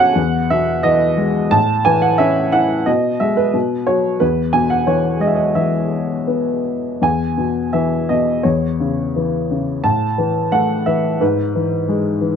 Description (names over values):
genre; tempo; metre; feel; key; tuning
classical, lyrical solo piano; 87 BPM; 4/4; uneven beats, rubato; E major; A4 = 436 Hz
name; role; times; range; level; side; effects
warm upright piano; solo; 0.0-12.4 s; E2 to A5; -15 LUFS; equal; none
room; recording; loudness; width
light reverb; close, detailed microphones; -15 LUFS; side -7 dB against mid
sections
0.0-7.0 A section; 7.0-12.4 B section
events
none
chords
0.2 E; 1.5 A; 2.9 B6; 3.5 B5; 4.2 E; 8.4 C#m/E; 9.8 A5; 11.2 E/G#